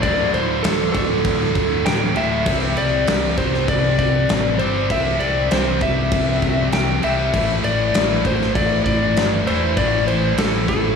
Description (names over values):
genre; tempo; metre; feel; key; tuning
hard rock; 99 BPM; 4/4; straight; unclear; A4 = 441 Hz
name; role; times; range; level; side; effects
lightly driven lead guitar; melody; 0.0-11.0 s; A4 to G5; -21 LUFS; equal; slapback echo
high-gain distorted guitar; riff; 0.0-11.0 s; D2 to C4; -22 LUFS; left 2 dB; distortion
overdriven fingered electric bass; bass; 0.0-11.0 s; D1 to C2; -24 LUFS; left 1 dB; none
huge arena drum kit; drums; 0.0-10.8 s; crash cymbal, kick drum, snare drum; -22 LUFS; equal; none
room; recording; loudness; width
moderate lush hall reverb, RT60 2.0 s, small room ambience; big arena sound, studio ambience; -16 LUFS; side -6 dB against mid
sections
0.0-11.0 A section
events
none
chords
0.0 D5; 2.5 C; 7.3 A5